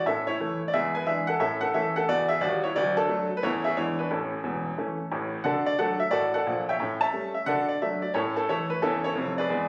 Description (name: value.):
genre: jazz, stride piano.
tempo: 178 BPM.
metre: 4/4.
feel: swing 64% on 8ths.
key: A major, D major from 5.4 s.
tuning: A4 = 440 Hz.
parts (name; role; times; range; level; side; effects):
bright upright piano; solo; 0.0-9.7 s; D#1 to A5; -27 LUFS; equal; none.
room: moderate club reverb, RT60 0.6 s.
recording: recorded on a phone in the room, club reverb, compression.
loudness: -27 LUFS.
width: mono.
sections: 0.0-5.4 A section; 5.4-9.7 B section.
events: none.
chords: 0.1 A; 0.7 E7; 1.4 A; 2.8 D; 3.4 A/E; 3.8 E7; 4.1 A; 5.4 D; 6.8 A7; 7.5 D; 8.1 A.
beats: | 0.06 0.40 0.73 1.07 | 1.41 1.75 2.08 2.42 | 2.75 3.09 3.43 3.77 | 4.10 4.44 4.78 5.11 | 5.45 5.79 6.12 6.46 | 6.80 7.13 7.47 7.81 | 8.14 8.48 8.82 9.16 | 9.49.